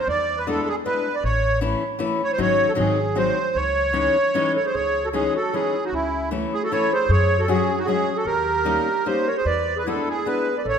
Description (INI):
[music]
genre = musette waltz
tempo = 154 BPM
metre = 3/4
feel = swing 53% on 8ths, rubato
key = unclear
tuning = A4 = 440 Hz
[part]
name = accordion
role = melody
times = 0.0-10.8 s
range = E4 to D5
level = -22 LUFS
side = right 2 dB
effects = light tremolo tuning
[part]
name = upright bass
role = bass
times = 0.0-10.8 s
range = G#1 to F#2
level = -26 LUFS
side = equal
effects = none
[part]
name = fingerpicked steel-string acoustic guitar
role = accompaniment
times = 0.5-10.5 s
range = E3 to F#4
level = -25 LUFS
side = left 4 dB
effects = none
[part]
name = clear clarinet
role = second line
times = 4.5-10.8 s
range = C#4 to B4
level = -28 LUFS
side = right 1 dB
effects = none
[sound]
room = wet recital hall reverb, RT60 1.6 s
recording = minimal, uncompressed stereo recording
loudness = -19 LUFS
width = side -7 dB against mid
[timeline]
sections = 0.0-4.7 A section; 4.7-10.8 A section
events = none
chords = 0.1 E7; 1.2 A; 2.4 G#7sus4; 2.8 G#7; 3.6 C#madd9; 5.9 A/C#; 7.1 F#sus2; 8.3 D#7; 9.5 E7